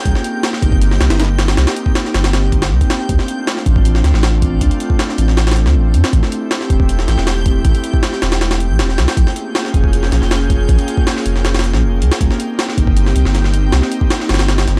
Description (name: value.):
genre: drum and bass, jungle.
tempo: 158 BPM.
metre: 4/4.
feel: straight.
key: unclear.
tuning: A4 = 440 Hz.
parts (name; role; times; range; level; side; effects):
airy breathy pad; sustained chords; 0.0-14.8 s; A3 to Ab4; -23 LUFS; equal; chorus, vintage 12-bit sampler grit.
backwards swelling texture; texture; 0.0-14.8 s; G5 to G6; -33 LUFS; equal; built-in reverb.
saturated sub bass; bass; 0.1-14.8 s; E1 to F2; -16 LUFS; equal; none.
jungle sampler-style drum kit; drums; 0.1-14.8 s; hi-hat, kick drum, snare drum; -18 LUFS; equal; overdrive.
room: little or no reverb.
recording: dry, gritty hardware recording, transformer saturation, vinyl crackle.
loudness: -15 LUFS.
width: mono.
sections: 0.0-14.8 A section.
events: none.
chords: 0.1 Cm7; 3.1 Dm7; 6.1 Am7; 9.2 Bbm7; 12.2 Cm7.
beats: | 0.05 0.43 0.81 1.19 | 1.57 1.95 2.33 2.71 | 3.09 3.47 3.85 4.23 | 4.61 4.99 5.37 5.75 | 6.13 6.51 6.89 7.27 | 7.65 8.03 8.41 8.79 | 9.17 9.55 9.93 10.31 | 10.69 11.07 11.45 11.82 | 12.21 12.59 12.96 13.34 | 13.72 14.10 14.48.